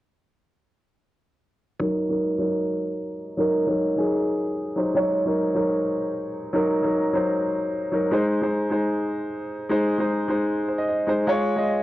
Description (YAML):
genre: hip hop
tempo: 152 BPM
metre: 4/4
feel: half-time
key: Eb dorian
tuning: A4 = 440 Hz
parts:
  - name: warm concert grand piano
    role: accompaniment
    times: 1.8-11.8 s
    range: Gb3 to Eb5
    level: -21 LUFS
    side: equal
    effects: low-pass filter, cassette tape
room: moderate small room reverb, RT60 0.5 s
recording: home recording on cassette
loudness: -21 LUFS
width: side -15 dB against mid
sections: 1.8-11.8 A section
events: filter sweep on grand piano 1.8-11.8; grand piano fill 10.5-11.3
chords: 1.8 Ebm; 8.1 Ab; 11.3 Db